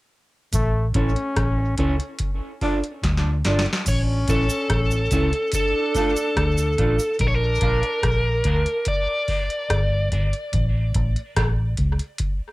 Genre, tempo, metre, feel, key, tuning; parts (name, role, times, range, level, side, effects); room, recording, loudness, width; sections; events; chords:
dub reggae; 72 BPM; 4/4; straight; A4 = 440 Hz
bright trombone; second line; 0.5-8.4 s; A3 to D4; -30 LUFS; left 1 dB; high-pass filter, cassette tape, tape echo
vintage muted fingered electric bass; bass; 0.5-12.0 s; G1 to D2; -21 LUFS; equal; tube saturation
booming analog drum machine; drums; 0.5-12.4 s; crash cymbal, hi-hat, kick drum, rim click, snare drum; -24 LUFS; equal; cassette tape
cabasa; percussion; 0.5-7.2 s; -35 LUFS; right 4 dB; high-pass filter on perc, tape echo
mellow electric guitar; accompaniment; 0.9-10.3 s; A3 to D5; -29 LUFS; right 2 dB; high-pass filter, cassette tape, tape echo
biting lead guitar; melody; 3.9-10.1 s; A4 to D5; -24 LUFS; equal; overdrive, cassette tape, tape echo
moderate studio reverb, RT60 0.5 s; home recording on cassette; -19 LUFS; side -20 dB against mid
0.5-3.9 A section; 3.9-12.5 B section
part muted 0.5-3.9, 7.2-12.5; drum fill 3.0-3.9; filter sweep 3.9-12.5
0.5 A; 2.2 Dm; 3.9 A; 5.5 Dm; 7.2 Bb; 8.9 Gm; 10.5 N.C.